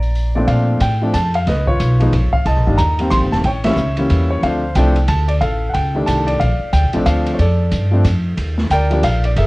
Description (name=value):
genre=jazz piano trio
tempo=182 BPM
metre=3/4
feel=swing 61% on 8ths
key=Bb major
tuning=A4 = 440 Hz
part: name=warm grand piano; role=melody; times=0.0-9.5 s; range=Bb2 to C6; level=-18 LUFS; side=equal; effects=none
part: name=upright bass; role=bass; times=0.0-9.5 s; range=Eb1 to Bb2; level=-16 LUFS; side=equal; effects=none
part: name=open jazz drum kit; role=drums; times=0.0-9.5 s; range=hi-hat, kick drum, ride cymbal, snare drum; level=-25 LUFS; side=equal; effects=cassette tape
room=light reverb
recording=home recording on cassette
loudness=-14 LUFS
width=side -22 dB against mid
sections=0.5-8.4 A section; 8.4-9.5 B section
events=band accent 3.6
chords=0.5 Bbmaj7; 1.5 Db9; 2.5 Cm7; 3.4 A7b9; 4.4 Dm7; 5.4 F13/A; 6.4 Bbmaj7; 8.4 Ebmaj9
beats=0.15 | 0.48 0.81 1.14 | 1.47 1.79 2.12 | 2.45 2.78 3.11 | 3.44 3.77 4.10 | 4.43 4.76 5.09 | 5.42 5.75 6.08 | 6.41 6.73 7.06 | 7.39 7.72 8.05 | 8.38 8.71 9.04 | 9.37